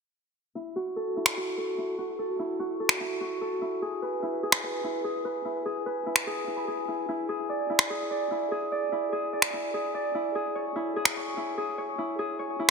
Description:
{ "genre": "future bass", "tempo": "147 BPM", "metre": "4/4", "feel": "swing 54% on 16ths, half-time", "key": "F# minor", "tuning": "A4 = 440 Hz", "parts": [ { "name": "Celtic harp", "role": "arpeggios", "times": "0.6-12.7 s", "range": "E4 to B5", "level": "-29 LUFS", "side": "equal", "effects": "low-pass filter, ping-pong delay" }, { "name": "electronic finger snaps", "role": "drums", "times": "1.3-11.1 s", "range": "none", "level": "-25 LUFS", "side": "equal", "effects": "overdrive, soft clipping on snare" } ], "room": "moderate lush hall reverb, RT60 2.5 s", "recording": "dense, heavily limited modern master", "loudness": "-27 LUFS", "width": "side -5 dB against mid", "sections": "0.4-12.7 A section", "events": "filter sweep on harp 0.4-12.7", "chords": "0.4 F#m7; 3.7 E; 7.0 E7; 10.0 Amaj7/E (rootless)", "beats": "| 0.44 0.85 1.26 1.67 | 2.08 2.48 2.89 3.30 | 3.71 4.12 4.53 4.93 | 5.34 5.75 6.16 6.57 | 6.97 7.38 7.79 8.20 | 8.61 9.02 9.42 9.83 | 10.24 10.65 11.06 11.46 | 11.87 12.28 12.69" }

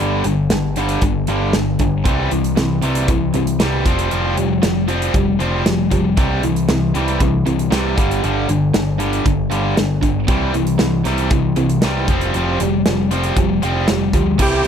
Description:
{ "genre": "classic rock", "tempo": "117 BPM", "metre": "4/4", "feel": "straight", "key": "unclear", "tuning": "A4 = 441 Hz", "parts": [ { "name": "overdriven electric guitar", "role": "riff", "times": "0.0-14.7 s", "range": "G2 to E4", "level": "-21 LUFS", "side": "right 13 dB", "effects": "none" }, { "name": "tight distorted guitar", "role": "riff", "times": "0.0-14.7 s", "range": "G2 to E4", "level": "-20 LUFS", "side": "left 12 dB", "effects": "distortion" }, { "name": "growling picked electric bass", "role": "bass", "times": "0.0-14.6 s", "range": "F1 to D2", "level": "-21 LUFS", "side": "equal", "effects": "overdrive" }, { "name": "big rock drum kit", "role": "drums", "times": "0.2-14.7 s", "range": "crash cymbal, hi-hat, kick drum, snare drum", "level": "-20 LUFS", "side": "right 1 dB", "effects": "none" }, { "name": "overdriven tonewheel organ", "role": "melody", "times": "14.4-14.7 s", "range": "G4", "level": "-17 LUFS", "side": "right 2 dB", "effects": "chorus vibrato, slapback echo" } ], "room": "small room ambience", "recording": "dry, close 1970s-style studio recording", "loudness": "-15 LUFS", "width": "side -8 dB against mid", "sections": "0.0-14.4 A section", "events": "none", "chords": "0.0 G5; 2.1 C; 3.9 Fsus2; 6.2 C; 8.0 G5; 10.3 C; 12.1 Fsus2", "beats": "0.51 1.03 1.54 | 2.06 2.58 3.09 3.61 | 4.12 4.64 5.15 5.67 | 6.18 6.70 7.21 7.72 | 8.24 8.75 9.26 9.78 | 10.29 10.80 11.32 11.83 | 12.34 12.86 13.37 13.88 | 14.40" }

